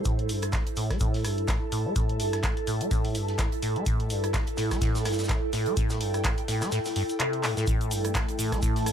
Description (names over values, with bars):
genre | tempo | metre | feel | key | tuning
acid house | 126 BPM | 4/4 | swing 57% on 16ths | unclear | A4 = 440 Hz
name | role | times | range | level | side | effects
acid bass, saw | riff | 0.0-8.9 s | G2 to A3 | -30 LUFS | equal | tube saturation, wide subtle chorus
modern studio drum kit | drums | 0.0-8.9 s | hi-hat, shaker, snare drum | -40 LUFS | right 1 dB | sidechain pumping on hats, high-pass filter on hats, high-pass filter on snare, sidechain pumping on perc, high-pass filter on perc, high-pass filter on room
ethereal airy pad | texture | 0.0-8.9 s | E4 to A5 | -31 LUFS | right 2 dB | ensemble chorus, built-in reverb, phaser, sidechain pumping
electronic kick drum | drums | 0.1-8.7 s | none | -28 LUFS | equal | none
punchy analog drum machine | drums | 0.1-8.9 s | handclaps, hi-hat, rim click, shaker | -34 LUFS | equal | none
dark analog pad | sustained chords | 7.9-8.9 s | A3 to A5 | -34 LUFS | left 1 dB | chorus, sidechain pumping
room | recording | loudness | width
light reverb | none | -25 LUFS | side -9 dB against mid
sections
0.0-8.9 A section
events
filter sweep on acid bass 0.0-8.9; kick drops out 6.7-7.7; drum fill 7.4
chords
0.0 A5